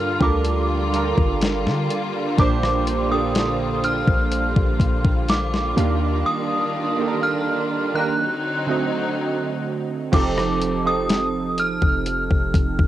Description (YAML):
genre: contemporary R&B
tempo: 62 BPM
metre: 4/4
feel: straight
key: unclear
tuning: A4 = 440 Hz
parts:
  - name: synth chime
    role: melody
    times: 0.0-12.9 s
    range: D6 to F#6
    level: -25 LUFS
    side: equal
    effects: ensemble chorus, cassette tape, plate reverb
  - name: warm analog keys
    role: accompaniment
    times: 0.0-12.9 s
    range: Bb2 to F5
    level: -24 LUFS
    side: right 6 dB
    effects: chorus, cassette tape, plate reverb
  - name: warm studio string section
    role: sustained chords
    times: 0.0-10.1 s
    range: D3 to F4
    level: -27 LUFS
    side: left 2 dB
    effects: sidechain pumping, cassette tape
  - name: warm 808-style bass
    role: bass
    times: 0.0-12.9 s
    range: F1 to D3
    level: -24 LUFS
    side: left 1 dB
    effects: none
  - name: crisp 8-bit digital drum machine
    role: drums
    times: 0.2-12.9 s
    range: crash cymbal, hi-hat, kick drum, rim click, snare drum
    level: -21 LUFS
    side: left 1 dB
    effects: cassette tape
room: light reverb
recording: home recording on cassette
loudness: -18 LUFS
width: side -13 dB against mid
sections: 0.0-10.1 A section; 10.1-12.9 A section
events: break 6.3-10.1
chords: 0.0 Gm7; 2.4 Bb6; 5.8 Ebmaj9; 8.2 D7b9; 10.1 F7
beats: 0.45 1.42 | 2.39 3.36 4.32 5.29 | 6.26 7.23 8.19 9.16 | 10.13 11.10 12.06